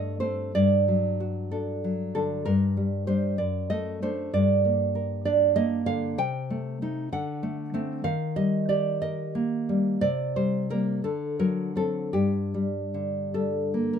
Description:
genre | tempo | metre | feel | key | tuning
romantic piece for solo classical guitar | 50-67 BPM (dotted quarters) | 6/8 | rubato | G minor | A4 = 442 Hz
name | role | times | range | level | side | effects
nylon-string guitar | solo | 0.0-14.0 s | F#2 to G5 | -24 LUFS | equal | none
room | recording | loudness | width
moderate studio reverb, RT60 0.7 s | minimal, uncompressed stereo recording | -24 LUFS | side -7 dB against mid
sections
0.0-14.0 A section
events
none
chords
0.0 Cm6/G; 0.5 D/G; 2.5 Gm; 3.4 D/F#; 4.3 Gm; 6.2 Adim/C; 7.1 D7; 8.0 Eb; 10.0 C5; 11.0 D7; 12.1 Gm

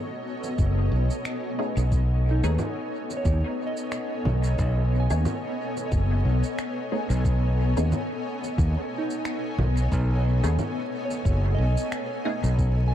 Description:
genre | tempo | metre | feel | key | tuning
ambient dub | 90 BPM | 4/4 | swing 55% on 16ths | B mixolydian | A4 = 442 Hz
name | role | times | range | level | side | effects
granular cloud pad | sustained chords | 0.0-12.9 s | B3 to G#5 | -30 LUFS | left 1 dB | built-in reverb
electronic shaker, finger snaps and congas | drums | 0.4-12.7 s | none | -34 LUFS | right 2 dB | dub echo
modern bright fingered electric bass | bass | 0.6-12.9 s | F#1 to D#2 | -22 LUFS | equal | none
electronic kick drum | drums | 0.6-12.7 s | none | -26 LUFS | equal | none
filtered dub chord stab | stabs | 1.6-12.4 s | A3 to G#4 | -34 LUFS | left 1 dB | phaser, analog chorus, dub echo
soft synth bell | arpeggios | 2.3-12.9 s | D#4 to G#5 | -36 LUFS | right 2 dB | chorus, dub echo
room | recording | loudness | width
little or no reverb | echo-heavy mix, vinyl crackle | -23 LUFS | side -11 dB against mid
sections
0.0-12.9 A section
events
none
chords
0.0 B13

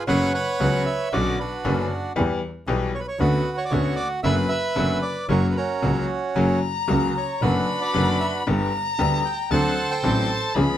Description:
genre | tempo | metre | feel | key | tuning
tango | 115 BPM | 4/4 | rubato | B harmonic minor | A4 = 439 Hz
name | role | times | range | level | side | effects
bandoneon | melody | 0.0-10.5 s | C#4 to A5 | -25 LUFS | right 3 dB | none
bright concert grand piano | accompaniment | 0.1-10.8 s | F#1 to A4 | -25 LUFS | left 3 dB | none
rich double bass | bass | 0.1-10.8 s | F#1 to E2 | -25 LUFS | right 1 dB | none
dark violin | second line | 6.4-10.8 s | A5 to B5 | -26 LUFS | left 4 dB | slapback echo
room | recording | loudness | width
light reverb | none | -20 LUFS | side -11 dB against mid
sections
0.0-10.8 A section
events
none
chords
0.1 F#sus4; 1.1 Bmadd9; 2.2 Em; 3.2 Bmadd9/D; 4.2 Bm/F#; 5.3 F#; 7.4 Bm/F#; 8.5 G; 9.5 D7

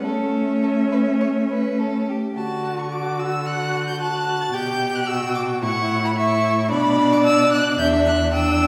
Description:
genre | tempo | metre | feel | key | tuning
quick classical-period movement for string quartet | 102-112 BPM | 4/4 | rubato | D major | A4 = 440 Hz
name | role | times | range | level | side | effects
bright violin | melody | 0.0-8.7 s | E5 to A6 | -28 LUFS | equal | none
clear violin | second line | 0.0-8.7 s | G4 to A5 | -27 LUFS | equal | none
rich viola | accompaniment | 0.0-8.7 s | A3 to G4 | -25 LUFS | equal | none
rich cello | bass | 0.0-8.7 s | E2 to C#4 | -26 LUFS | equal | none
room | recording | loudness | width
wet recital hall reverb, RT60 1.5 s | heard from further back in the room | -21 LUFS | mono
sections
0.0-2.4 A section; 2.4-8.7 B section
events
none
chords
0.0 A; 2.4 D; 4.5 G/B; 5.6 A; 6.7 Bm; 7.8 Em7

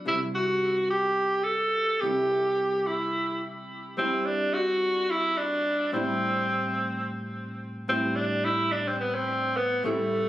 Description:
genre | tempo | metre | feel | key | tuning
progressive instrumental, progressive | free time | none | none | A dorian | A4 = 441 Hz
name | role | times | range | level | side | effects
hollow-body jazz guitar | accompaniment | 0.0-10.3 s | A2 to E4 | -32 LUFS | equal | double-tracked left and right
bright tenor saxophone | melody | 0.1-10.3 s | A3 to A4 | -25 LUFS | equal | plate reverb, digital delay
room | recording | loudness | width
wet small room reverb, RT60 0.6 s | recorded on a phone in the room, club reverb | -24 LUFS | side -14 dB against mid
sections
0.0-7.9 A section; 7.9-10.3 B section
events
tenor saxophone solo 7.9-10.3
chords
0.1 Am7/C (rootless); 4.0 Cadd9; 5.9 Am7

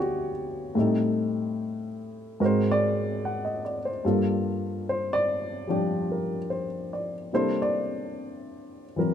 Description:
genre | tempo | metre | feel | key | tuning
jazz ballad | 73 BPM | 4/4 | swing 68% on 8ths | unclear | A4 = 444 Hz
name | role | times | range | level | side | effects
dark baby grand piano | solo | 0.0-9.1 s | D2 to F#5 | -25 LUFS | left 1 dB | none
room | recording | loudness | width
light reverb | none | -25 LUFS | side -9 dB against mid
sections
0.0-9.1 A section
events
none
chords
0.0 Dmaj9; 0.8 Am7b5; 2.4 G#9; 4.0 Gm9; 7.3 C13

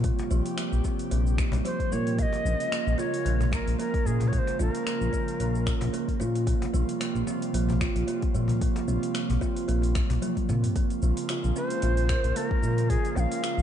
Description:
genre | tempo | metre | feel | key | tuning
organic downtempo | 112 BPM | 4/4 | swing 55% on 16ths | Bb dorian | A4 = 438 Hz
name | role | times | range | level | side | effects
airy breathy pad | sustained chords | 0.0-13.6 s | C3 to G4 | -35 LUFS | equal | chorus, sidechain pumping
kalimba | arpeggios | 0.0-13.6 s | F3 to Bb4 | -31 LUFS | right 4 dB | ping-pong delay
smooth gliding synth bass | bass | 0.0-13.6 s | Bb1 to Bb2 | -26 LUFS | left 1 dB | sidechain pumping
afro-pop drum kit | drums | 0.0-13.6 s | finger snaps, hi-hat, shaker, toms | -37 LUFS | left 2 dB | overdrive, small room reverb
electronic kick drum | drums | 0.0-13.0 s | none | -29 LUFS | left 1 dB | overdrive, small room reverb
cajon | percussion | 0.2-10.6 s | none | -36 LUFS | left 4 dB | none
mellow Native American-style cedar flute | melody | 1.7-6.2, 11.6-13.6 s | Ab4 to G5 | -31 LUFS | left 1 dB | digital delay
room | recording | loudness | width
light reverb, digital ambience | dark, warm production, nothing above 10.5 kHz | -24 LUFS | side -10 dB against mid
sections
0.0-10.8 A section; 10.8-13.6 B section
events
drum fill 10.2-10.8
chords
0.0 Fsus2/Bb; 2.2 Bbm7; 6.5 Fsus2/Bb; 10.8 Bbm7

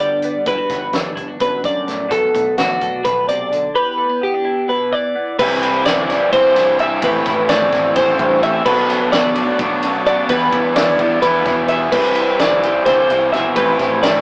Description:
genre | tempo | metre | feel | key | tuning
math rock and midwest emo | 257 BPM (eighths) | 7/8 | straight | E minor | A4 = 440 Hz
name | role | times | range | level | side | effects
twelve-string electric guitar | accompaniment | 0.0-14.2 s | E2 to A4 | -27 LUFS | equal | phaser
twelve-string electric guitar | arpeggios | 0.0-14.2 s | F#4 to E5 | -18 LUFS | equal | none
growling fingered electric bass | bass | 0.0-14.2 s | G1 to F#2 | -30 LUFS | equal | overdrive
loose indie drum kit | drums | 0.2-14.1 s | crash cymbal, hi-hat, kick drum, ride cymbal, snare drum | -25 LUFS | equal | none
raw garage guitar | riff | 5.4-14.2 s | A2 to E4 | -22 LUFS | equal | overdrive
room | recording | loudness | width
moderate small room reverb, RT60 0.5 s | rough rehearsal-room recording, warm saturation, small speaker sound | -16 LUFS | mono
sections
0.0-5.4 A section; 5.4-14.2 B section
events
none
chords
0.0 Gmaj7; 2.1 Bm7; 3.8 Em7; 5.4 Cmaj7; 7.0 Am9; 8.7 Bm7; 10.3 Em7; 11.9 Cmaj7; 13.6 Am9

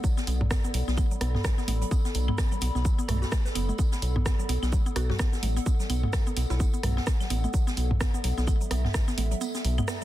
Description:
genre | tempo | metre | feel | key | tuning
minimal techno | 128 BPM | 4/4 | swing 58% on 16ths | B minor | A4 = 440 Hz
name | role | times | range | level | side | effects
mallet-like synth pluck | riff | 0.0-10.0 s | F#3 to B4 | -35 LUFS | equal | chorus, sidechain pumping, ping-pong delay
electronic kick drum | drums | 0.0-9.1 s | none | -26 LUFS | equal | none
house drum kit | drums | 0.0-10.0 s | hi-hat, rim click, shaker | -35 LUFS | right 1 dB | soft clipping on snare
soft-mallet drum kit | drums | 0.0-10.0 s | hi-hat, snare drum, tambourine | -42 LUFS | right 1 dB | sidechain pumping on hats, high-pass filter on hats, high-pass filter on snare, sidechain pumping on perc, high-pass filter on perc, high-pass filter on room
warbly tape-like pad | texture | 0.0-10.0 s | B3 to B5 | -36 LUFS | right 1 dB | chorus, built-in reverb, sidechain pumping
round analog bass | bass | 0.3-9.8 s | F#1 to B1 | -27 LUFS | equal | sidechain pumping
electronic toms, congas and claves | percussion | 0.4-9.9 s | none | -34 LUFS | right 2 dB | none
mallet-like synth pluck | melody | 5.0-7.2 s | E4 to F#4 | -40 LUFS | equal | chorus, cassette tape, tape echo
room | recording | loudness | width
little or no reverb | dense, heavily limited modern master | -24 LUFS | side -14 dB against mid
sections
0.0-10.0 A section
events
kick drops out 9.4-10.0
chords
0.0 Bm7

